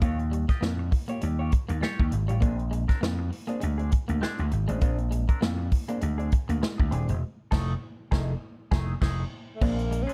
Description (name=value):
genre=funk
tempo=100 BPM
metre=4/4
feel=swing 56% on 16ths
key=Bb mixolydian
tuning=A4 = 439 Hz
part: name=clean electric guitar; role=accompaniment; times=0.0-10.1 s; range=A3 to Eb5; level=-39 LUFS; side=equal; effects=wah
part: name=clean electric guitar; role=riff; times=0.0-10.1 s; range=G3 to Bb3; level=-38 LUFS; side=equal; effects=none
part: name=vintage slap bass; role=bass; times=0.0-10.0 s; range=Eb1 to F2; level=-30 LUFS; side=equal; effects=none
part: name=swinging big-band drum kit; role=drums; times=0.0-10.1 s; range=crash cymbal, hi-hat, kick drum, snare drum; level=-30 LUFS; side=equal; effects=none
part: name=breathy tenor saxophone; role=melody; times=9.6-10.1 s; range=A3 to Db4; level=-35 LUFS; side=equal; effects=none
room=little or no reverb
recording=dark, warm production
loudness=-27 LUFS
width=mono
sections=0.0-9.6 A section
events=band accent 7.2-9.6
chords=0.0 Eb9; 2.4 Bb9; 7.2 F7#9; 9.6 Bb9